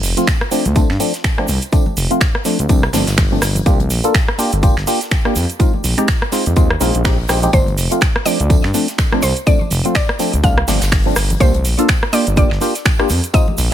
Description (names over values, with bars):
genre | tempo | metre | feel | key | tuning
deep house | 124 BPM | 4/4 | swing 58% on 16ths | G minor | A4 = 441 Hz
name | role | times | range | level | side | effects
smooth gliding synth bass | bass | 0.0-13.7 s | F1 to G2 | -18 LUFS | equal | sidechain pumping
gated 80s drum kit | drums | 0.0-13.7 s | hi-hat, snare drum, tambourine | -30 LUFS | right 1 dB | sidechain pumping on hats, high-pass filter on hats, high-pass filter on snare, sidechain pumping on perc, high-pass filter on perc, high-pass filter on room
house drum kit | drums | 0.0-13.7 s | finger snaps, hi-hat, rim click | -20 LUFS | right 2 dB | none
egg shaker | percussion | 0.0-13.7 s | none | -28 LUFS | right 4 dB | none
percussive organ stab | stabs | 0.2-13.5 s | F3 to A4 | -19 LUFS | equal | chorus, phaser, sidechain pumping, digital delay
electronic kick drum | drums | 0.3-13.5 s | none | -15 LUFS | equal | none
congas | percussion | 1.9-13.6 s | none | -28 LUFS | left 1 dB | none
mallet-like synth pluck | melody | 7.5-13.7 s | C5 to F5 | -22 LUFS | equal | chorus, ping-pong delay
room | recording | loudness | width
small room ambience | none | -13 LUFS | side -11 dB against mid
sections
0.0-13.7 A section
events
filter sweep on synth stab 0.0-13.7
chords
0.0 G9sus4; 3.7 C9sus4; 5.6 Bb9sus4; 7.5 G9sus4; 11.4 C9sus4